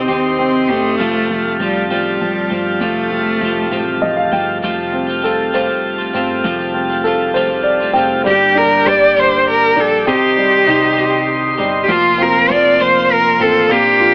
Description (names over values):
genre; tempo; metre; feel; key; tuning
six-eight pop ballad; 66 BPM (dotted quarters); 6/8; straight; unclear; A4 = 440 Hz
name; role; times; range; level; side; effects
rich cello; melody; 0.0-4.0, 8.3-14.1 s; G3 to D5; -13 LUFS; equal; none
warm grand piano; accompaniment; 0.0-14.1 s; C3 to G5; -18 LUFS; equal; none
tonewheel organ; sustained chords; 0.0-14.1 s; Bb3 to C6; -19 LUFS; equal; slow rotary speaker
twelve-string electric guitar; arpeggios; 0.0-14.1 s; F2 to G4; -22 LUFS; equal; none
hollow-body short-scale picked electric bass; bass; 0.0-14.1 s; F1 to Eb2; -32 LUFS; equal; none
room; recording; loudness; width
light reverb; AM radio sound; -11 LUFS; side -32 dB against mid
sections
0.0-4.6 A section; 4.6-8.3 B section; 8.3-14.1 C section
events
grand piano fill 3.7-4.6, 7.4-8.3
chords
0.0 Cm; 1.0 Fadd9; 8.3 Gm; 10.1 Cm; 11.9 Fsus4